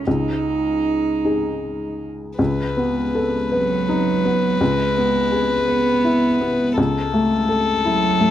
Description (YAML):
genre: neoclassical piano and strings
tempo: 51-56 BPM (dotted quarters)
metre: 6/8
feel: rubato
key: unclear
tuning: A4 = 440 Hz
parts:
  - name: warm cello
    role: second line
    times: 0.0-8.3 s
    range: F#3 to D#4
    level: -22 LUFS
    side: right 4 dB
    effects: none
  - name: felt-muted upright piano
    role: accompaniment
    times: 0.0-8.3 s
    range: C#2 to B4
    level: -20 LUFS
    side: left 1 dB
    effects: none
  - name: warm violin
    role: melody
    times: 2.4-8.3 s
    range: A4 to B4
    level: -21 LUFS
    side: left 4 dB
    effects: none
room: light reverb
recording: dark, warm production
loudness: -17 LUFS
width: side -11 dB against mid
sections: 0.0-2.4 A section; 2.4-8.3 B section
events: none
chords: 0.1 G#5/C#; 2.4 B7/C#; 4.6 C#m7; 6.8 F#m7/C#